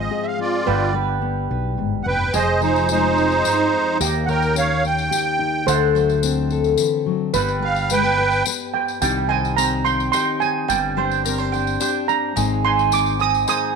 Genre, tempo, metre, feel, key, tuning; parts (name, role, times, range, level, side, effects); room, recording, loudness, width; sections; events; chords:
acoustic folk duo or small band; 108 BPM; 3/4; straight; C minor; A4 = 440 Hz
musette accordion; melody; 0.0-8.5 s; Eb4 to G5; -19 LUFS; right 3 dB
steel pan; second line; 0.0-13.8 s; G4 to Eb6; -22 LUFS; right 8 dB
fingerpicked steel-string acoustic guitar; accompaniment; 0.0-13.8 s; Eb2 to B4; -24 LUFS; left 9 dB
mandolin; arpeggios; 0.0-13.8 s; G3 to Ab5; -25 LUFS; right 9 dB
mellow fretless electric bass; bass; 0.0-13.4 s; F1 to Eb2; -24 LUFS; left 1 dB
tambourine; percussion; 2.3-13.6 s; -29 LUFS; left 14 dB
wet echo chamber reverb, RT60 1.3 s, studio ambience; 1960s-style stereo with parts hard left and right; -17 LUFS; side -5 dB against mid
0.0-9.0 A section; 9.0-13.8 B section
accordion solo 0.0-9.0; steel pan solo 9.0-13.8
0.0 Fm/Ab; 0.7 G; 2.3 Fm; 4.0 Eb7; 5.7 D7; 7.3 G; 9.0 Cm; 10.7 Gsus4; 12.4 Ab